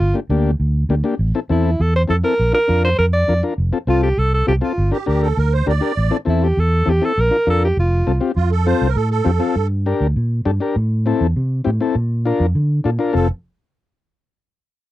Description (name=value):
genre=latin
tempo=201 BPM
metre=4/4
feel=straight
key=F major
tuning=A4 = 440 Hz
part: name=breathy alto saxophone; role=melody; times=0.0-8.2 s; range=E4 to D5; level=-18 LUFS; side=right 1 dB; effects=none
part: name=fingered electric bass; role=bass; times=0.0-13.3 s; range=F1 to D3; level=-17 LUFS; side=equal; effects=none
part: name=combo organ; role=accompaniment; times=0.1-13.3 s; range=Bb3 to Bb4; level=-20 LUFS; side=left 5 dB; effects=none
part: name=musette accordion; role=second line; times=4.9-6.2, 8.4-9.7, 13.2-13.3 s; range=F4 to D5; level=-22 LUFS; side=right 7 dB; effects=none
room=little or no reverb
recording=dry, close 1970s-style studio recording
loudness=-15 LUFS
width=side -15 dB against mid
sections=0.0-8.4 A section; 8.4-13.1 B section; 13.1-14.3 C section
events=none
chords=0.0 Gm; 1.2 Am; 2.4 Bb; 3.6 F; 4.8 Gm; 6.0 Am; 7.2 Bb; 7.8 F5; 8.4 F; 9.6 Gm; 10.8 Am; 12.0 Bb; 13.1 F